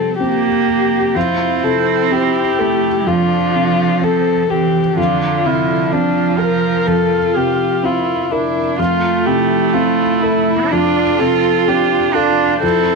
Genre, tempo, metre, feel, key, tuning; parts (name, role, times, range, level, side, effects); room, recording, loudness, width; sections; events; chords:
neoclassical piano and strings; 63 BPM; 4/4; rubato; F major; A4 = 441 Hz
dark violin; melody; 0.0-13.0 s; D4 to Bb4; -17 LUFS; left 10 dB
dark viola; accompaniment; 0.0-13.0 s; C4 to G4; -22 LUFS; right 11 dB
felt-muted upright piano; accompaniment; 0.0-13.0 s; F2 to Bb4; -21 LUFS; right 1 dB
warm cello; second line; 0.2-13.0 s; D3 to F4; -17 LUFS; right 8 dB
moderate echo chamber reverb, RT60 1.3 s, studio reverb; 1960s-style stereo with parts hard left and right; -13 LUFS; side -3 dB against mid
0.0-13.0 A section
0.0 C5/F; 1.2 F6; 5.0 Bbadd9/F; 8.8 F6